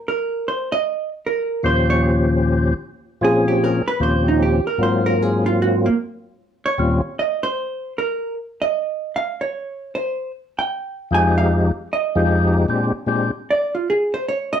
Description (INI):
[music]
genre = jazz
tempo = 152 BPM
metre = 4/4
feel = swing 66% on 8ths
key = Eb mixolydian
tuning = A4 = 438 Hz
[part]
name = vintage hollow-body jazz guitar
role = accompaniment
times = 0.1-14.6 s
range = Bb3 to Ab5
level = -21 LUFS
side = right 3 dB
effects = none
[part]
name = percussive tonewheel organ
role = melody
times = 1.6-7.0, 11.1-13.3 s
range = Eb2 to C5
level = -17 LUFS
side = left 2 dB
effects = slow rotary speaker, overdrive, chorus vibrato
[sound]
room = moderate studio reverb, RT60 0.6 s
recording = dark, warm production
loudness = -18 LUFS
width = side -8 dB against mid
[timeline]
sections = 0.0-14.6 A section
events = hollow-body jazz guitar solo 0.0-14.6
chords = 0.1 N.C.; 1.6 Eb13; 3.2 Bbm7; 4.0 Eb13; 4.8 Ab13; 6.4 Eb7sus2; 9.5 N.C.; 11.1 Fm7; 12.7 Bb13